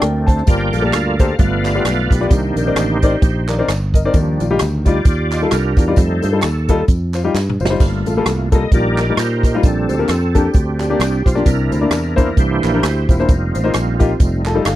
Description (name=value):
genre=uptempo gospel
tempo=131 BPM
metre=4/4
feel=swing 57% on 8ths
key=unclear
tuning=A4 = 440 Hz
part: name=warm grand piano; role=accompaniment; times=0.0-14.8 s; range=G2 to A5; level=-19 LUFS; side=left 4 dB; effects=none
part: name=bright tonewheel organ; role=sustained chords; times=0.0-14.8 s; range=Eb3 to G5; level=-20 LUFS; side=right 2 dB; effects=fast rotary speaker, chorus vibrato
part: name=fingered electric bass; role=bass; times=0.0-14.8 s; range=E1 to Bb2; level=-19 LUFS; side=equal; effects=none
part: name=swinging big-band drum kit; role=drums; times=0.0-14.8 s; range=hi-hat, kick drum, rim click, snare drum, splash cymbal, toms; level=-15 LUFS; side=equal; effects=none
part: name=tambourine and handclaps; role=percussion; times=0.5-14.8 s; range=none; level=-32 LUFS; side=right 3 dB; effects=none
room=little or no reverb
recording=dry, close 1970s-style studio recording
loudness=-13 LUFS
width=side -14 dB against mid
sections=0.0-14.8 A section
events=tonewheel organ solo 0.0-14.8; drum fill 7.3-7.8; grand piano fill 14.2-14.8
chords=0.0 Gm9; 1.4 G7; 2.3 Cm9; 4.1 Ebmaj9; 6.0 F9; 7.8 Gm9; 8.7 Eb/Bb; 9.6 Bb69; 11.5 C9; 13.3 F9